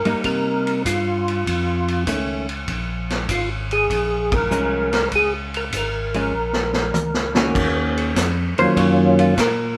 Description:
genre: soul jazz organ trio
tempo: 99 BPM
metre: 4/4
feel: swing 69% on 8ths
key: Bb minor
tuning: A4 = 440 Hz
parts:
  - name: percussive tonewheel organ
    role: melody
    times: 0.0-9.3 s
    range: Eb3 to Bb4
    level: -22 LUFS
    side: equal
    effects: chorus vibrato, slow rotary speaker
  - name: tonewheel organ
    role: bass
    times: 0.0-9.8 s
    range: Ab1 to C3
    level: -28 LUFS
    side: equal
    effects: overdrive, chorus vibrato, slow rotary speaker
  - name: hollow-body jazz guitar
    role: accompaniment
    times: 0.1-9.8 s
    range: Eb3 to Db5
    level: -25 LUFS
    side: equal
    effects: none
  - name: vintage drum kit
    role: drums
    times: 0.1-9.6 s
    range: crash cymbal, hi-hat, kick drum, ride cymbal, snare drum, toms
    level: -27 LUFS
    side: equal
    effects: none
room: moderate studio reverb, RT60 0.9 s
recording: band playing live in one room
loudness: -20 LUFS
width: mono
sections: 0.0-7.6 A section; 7.6-9.8 B section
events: band accent 4.2-4.5; drum fill 6.3-7.6; hollow-body jazz guitar solo 7.6-9.8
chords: 0.3 Cm7; 1.5 Faug7; 2.7 Bbm7; 7.6 Ebm7

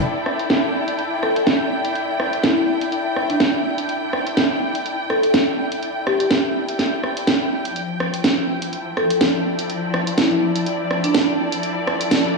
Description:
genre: bass house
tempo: 124 BPM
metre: 4/4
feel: swing 55% on 16ths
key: E phrygian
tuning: A4 = 440 Hz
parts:
  - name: house drum kit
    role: drums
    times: 0.0-12.2 s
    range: hi-hat, rim click, snare drum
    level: -20 LUFS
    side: right 2 dB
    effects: overdrive, low-pass filter on snare, low-pass filter on hats, low-pass filter on room
  - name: muted studio string section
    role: texture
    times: 0.0-12.4 s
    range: F3 to G5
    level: -23 LUFS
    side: left 2 dB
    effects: none
  - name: marimba with soft mallets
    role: melody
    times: 1.2-11.2 s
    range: D4 to A4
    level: -23 LUFS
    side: left 1 dB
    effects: dub echo
room: wet lush hall reverb, RT60 1.8 s, digital ambience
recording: small room ambience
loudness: -18 LUFS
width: side -2 dB against mid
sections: 0.0-12.4 A section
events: none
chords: 0.0 Em; 7.8 F

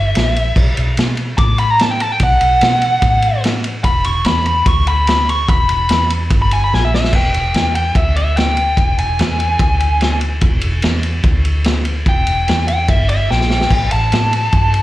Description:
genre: blues rock power trio and southern rock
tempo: 146 BPM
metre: 4/4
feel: straight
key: unclear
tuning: A4 = 439 Hz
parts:
  - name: biting lead guitar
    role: melody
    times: 0.0-14.8 s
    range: E5 to D6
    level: -16 LUFS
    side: equal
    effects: overdrive, slapback echo, analog delay
  - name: vintage muted fingered electric bass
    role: bass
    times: 0.0-14.8 s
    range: E1 to B2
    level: -17 LUFS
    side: equal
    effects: none
  - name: vintage drum kit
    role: drums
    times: 0.1-14.8 s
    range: crash cymbal, kick drum, ride cymbal, snare drum, splash cymbal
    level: -17 LUFS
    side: equal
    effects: none
room: little or no reverb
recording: live gig heard through the venue's PA, club reverb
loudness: -12 LUFS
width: side -15 dB against mid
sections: 0.0-7.1 A section; 7.1-14.8 A section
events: lead electric guitar solo 0.0-7.1, 7.1-14.8; drum fill 6.7-7.1, 13.3-13.7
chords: 0.0 Edim; 0.6 B5; 3.9 E7(no3); 13.7 A7(no3)

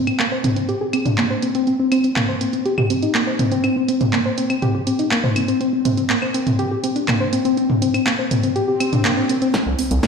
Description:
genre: melodic techno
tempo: 122 BPM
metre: 4/4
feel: straight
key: C minor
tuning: A4 = 440 Hz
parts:
  - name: soft round pluck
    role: arpeggios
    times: 0.0-10.1 s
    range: Bb3 to C5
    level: -19 LUFS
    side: left 1 dB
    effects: chorus, sidechain pumping, digital delay
  - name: techno drum kit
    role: drums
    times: 0.1-10.1 s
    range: claves, handclaps, hi-hat, snare drum, toms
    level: -21 LUFS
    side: equal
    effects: low-pass filter on hats, low-pass filter on toms, low-pass filter on snare, low-pass filter on perc, low-pass filter on room
  - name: swell and riser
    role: sound effects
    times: 8.7-10.1 s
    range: none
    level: -26 LUFS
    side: equal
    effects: none
  - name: bowed-like drone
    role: drone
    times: 9.8-10.1 s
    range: C3 to G3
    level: -42 LUFS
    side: left 3 dB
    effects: none
  - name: electronic kick drum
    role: drums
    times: 9.5-10.1 s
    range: none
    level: -24 LUFS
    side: equal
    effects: high-pass filter on kick, high-pass filter on room
  - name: gritty driven synth bass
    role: bass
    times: 9.7-10.0 s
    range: C2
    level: -20 LUFS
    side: equal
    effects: sidechain pumping
room: wet lush hall reverb, RT60 1.8 s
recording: played on a big sound system in a bare room, large studio reverb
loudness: -17 LUFS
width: side -6 dB against mid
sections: 0.0-9.5 A section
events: filter sweep on synth arpeggio sound 0.0-9.5; swell 8.7-9.5; drum fill 9.5-10.1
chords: 0.0 N.C.; 9.5 C5

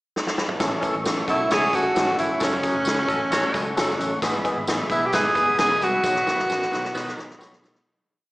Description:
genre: uptempo 1960s-style soul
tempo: 132 BPM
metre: 4/4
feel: straight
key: unclear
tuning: A4 = 440 Hz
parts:
  - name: swinging big-band drum kit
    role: drums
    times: 0.2-7.9 s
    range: hi-hat, kick drum, snare drum, toms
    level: -27 LUFS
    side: equal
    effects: none
  - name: overdriven tine electric piano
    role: accompaniment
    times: 0.6-7.7 s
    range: D#3 to A4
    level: -28 LUFS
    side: left 1 dB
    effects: analog chorus, slapback echo
  - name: tonewheel organ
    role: sustained chords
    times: 0.6-7.8 s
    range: F#4 to C#6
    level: -31 LUFS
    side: equal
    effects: slow rotary speaker, overdrive
  - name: vintage muted fingered electric bass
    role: bass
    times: 0.6-7.8 s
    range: E1 to B2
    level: -36 LUFS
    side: equal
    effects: none
  - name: tambourine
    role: percussion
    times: 0.6-7.7 s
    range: none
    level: -38 LUFS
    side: equal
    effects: none
  - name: breathy tenor saxophone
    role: melody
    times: 1.3-7.4 s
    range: C#4 to G#4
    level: -21 LUFS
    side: right 1 dB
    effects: none
  - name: bright saxophone section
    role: second line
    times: 1.3-7.3 s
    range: C#4 to C#5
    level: -28 LUFS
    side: equal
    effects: slapback echo
  - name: electric guitar through a small old amp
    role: riff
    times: 1.3-2.4, 5.1-6.0 s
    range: G#3 to B4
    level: -32 LUFS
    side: left 2 dB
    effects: slapback echo
room: moderate digital room reverb, RT60 1.0 s, studio reverb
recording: live gig heard through the venue's PA, recital hall reverb, small speaker sound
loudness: -20 LUFS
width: side -19 dB against mid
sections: 0.0-0.6 pickup bar; 0.6-7.9 pre-chorus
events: drum fill 0.1-0.6, 6.0-7.9; fade-out 6.0-7.9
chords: 0.0 N.C.; 0.6 A; 2.4 F#m; 4.2 E/G#; 6.0 B

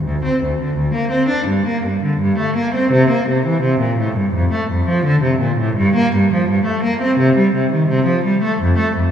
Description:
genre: classical, baroque-style suite movement for unaccompanied cello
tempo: 84 BPM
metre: 4/4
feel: rubato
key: unclear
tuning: A4 = 440 Hz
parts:
  - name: rich cello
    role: solo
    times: 0.0-9.1 s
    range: D2 to D4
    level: -14 LUFS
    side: equal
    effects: none
room: wet concert hall reverb, RT60 2.6 s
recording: recorded in a church or concert hall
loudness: -14 LUFS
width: side -8 dB against mid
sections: 0.0-9.1 A section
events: none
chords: none

